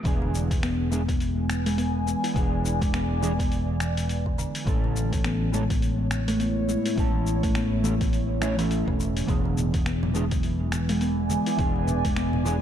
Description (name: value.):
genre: organic downtempo.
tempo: 104 BPM.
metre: 4/4.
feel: swing 59% on 16ths.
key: E mixolydian.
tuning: A4 = 440 Hz.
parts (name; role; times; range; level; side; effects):
mellow electric guitar; accompaniment; 0.0-12.6 s; E3 to A5; -32 LUFS; right 2 dB; analog chorus, sidechain pumping, tape echo.
warbly tape-like pad; sustained chords; 1.3-12.6 s; A2 to G#5; -31 LUFS; equal; chorus, built-in reverb, phaser, sidechain pumping.
kalimba; arpeggios; 0.0-12.6 s; B2 to E4; -29 LUFS; equal; tape echo.
fretless electric bass; bass; 0.1-12.6 s; E1 to A1; -28 LUFS; equal; sidechain pumping.
dusty soul sampler-style drum kit; drums; 0.1-12.6 s; finger snaps, hi-hat, shaker; -35 LUFS; left 2 dB; low-pass filter on perc, low-pass filter on snare, low-pass filter on hats.
electronic kick drum; drums; 0.1-12.1 s; none; -28 LUFS; equal; none.
congas; percussion; 9.5-12.4 s; none; -36 LUFS; right 2 dB; none.
room: light reverb, digital ambience.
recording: dark, warm production.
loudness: -23 LUFS.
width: side -10 dB against mid.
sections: 0.1-12.6 A section.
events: none.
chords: 0.1 E7; 4.7 A; 9.3 E7.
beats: | 0.05 0.63 1.21 1.78 | 2.36 2.94 3.51 4.09 | 4.67 5.24 5.82 6.40 | 6.97 7.55 8.13 8.71 | 9.28 9.86 10.44 11.01 | 11.59 12.17.